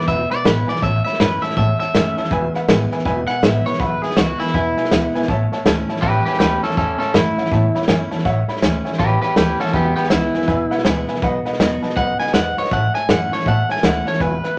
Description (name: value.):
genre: rockabilly.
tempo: 161 BPM.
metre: 4/4.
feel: swing 62% on 8ths.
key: unclear.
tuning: A4 = 437 Hz.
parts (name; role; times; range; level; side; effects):
electric guitar at the edge of break-up; melody; 0.0-14.6 s; B3 to G#5; -23 LUFS; equal; none.
picked steel-string acoustic guitar; accompaniment; 0.0-14.6 s; E2 to F#4; -26 LUFS; equal; none.
warm upright piano; accompaniment; 0.0-14.5 s; B4 to B5; -28 LUFS; equal; none.
vintage drum kit; drums; 0.0-14.5 s; hi-hat, kick drum, snare drum; -22 LUFS; equal; none.
upright bass; bass; 0.1-14.5 s; E1 to A2; -25 LUFS; equal; none.
room: moderate studio reverb, RT60 0.5 s.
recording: none.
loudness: -18 LUFS.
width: mono.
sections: 0.0-14.6 A section.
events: clean electric guitar solo 0.0-14.6.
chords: 0.0 E; 0.8 A; 2.3 E; 5.3 A; 9.7 E; 11.2 B; 12.7 A.